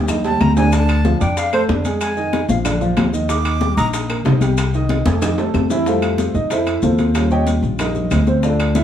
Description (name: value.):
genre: Afro-Cuban jazz.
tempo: 187 BPM.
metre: 4/4.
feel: straight.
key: unclear.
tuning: A4 = 440 Hz.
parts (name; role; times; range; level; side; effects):
warm concert grand piano; accompaniment; 0.0-8.8 s; D3 to Eb6; -20 LUFS; right 2 dB; none.
upright bass; bass; 0.0-8.8 s; Bb1 to F2; -18 LUFS; equal; none.
bongos; percussion; 0.1-8.8 s; none; -28 LUFS; left 6 dB; none.
claves; percussion; 0.1-8.8 s; none; -33 LUFS; left 5 dB; none.
congas; percussion; 0.1-8.8 s; none; -24 LUFS; left 4 dB; none.
maracas; percussion; 0.1-8.8 s; none; -35 LUFS; left 5 dB; none.
breathy silver concert flute; melody; 0.2-3.9 s; C5 to D6; -22 LUFS; equal; none.
timbales; percussion; 0.2-8.8 s; none; -28 LUFS; right 4 dB; none.
room: moderate studio reverb, RT60 0.9 s.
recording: studio ambience.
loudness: -15 LUFS.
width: side -10 dB against mid.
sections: 0.0-5.9 A section; 5.9-8.8 A section.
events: drum fill 0.0-0.7, 5.1-5.9; flute solo 0.0-5.9; grand piano solo 5.9-8.8.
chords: 0.1 Eb; 0.7 Dm; 2.0 Fm7; 2.7 Bb; 3.3 Ebmaj7; 4.6 Cm; 5.2 F7; 5.9 Fmaj7; 7.2 Eb9.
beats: 0.09 0.41 | 0.73 1.05 1.37 1.69 | 2.01 2.33 2.65 2.98 | 3.30 3.62 3.94 4.26 | 4.58 4.90 5.22 5.54 | 5.87 6.19 6.51 6.83 | 7.15 7.47 7.79 8.11 | 8.44 8.76.